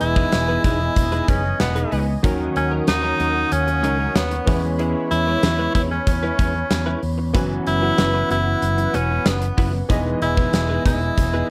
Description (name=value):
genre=1980s-style pop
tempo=94 BPM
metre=4/4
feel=straight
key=unclear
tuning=A4 = 438 Hz
part: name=bright tenor saxophone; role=melody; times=0.0-11.5 s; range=B3 to E4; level=-25 LUFS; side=equal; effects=slapback echo
part: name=clear concert grand piano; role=accompaniment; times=0.0-11.5 s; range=D#3 to D#5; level=-29 LUFS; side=equal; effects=none
part: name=brassy analog pad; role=sustained chords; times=0.0-11.5 s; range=B4 to D#6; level=-34 LUFS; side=equal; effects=chorus
part: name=direct-recorded clean electric guitar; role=riff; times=0.0-11.5 s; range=F#3 to B4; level=-30 LUFS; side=equal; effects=ensemble chorus, slapback echo
part: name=fretless electric bass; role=bass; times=0.0-11.4 s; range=E1 to E2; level=-26 LUFS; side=equal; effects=subtle chorus
part: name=gated 80s drum kit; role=drums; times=0.0-11.3 s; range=hi-hat, kick drum, snare drum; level=-23 LUFS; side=equal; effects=none
room=little or no reverb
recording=none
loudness=-20 LUFS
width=mono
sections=0.0-11.5 A section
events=none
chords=0.0 Emaj7; 2.2 D#m7; 4.5 C#m7/E; 7.3 F#7sus4; 9.9 Emaj7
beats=0.33 0.96 1.60 | 2.24 2.88 3.52 4.16 | 4.79 5.43 6.07 6.71 | 7.35 7.99 8.62 9.26 | 9.90 10.54 11.18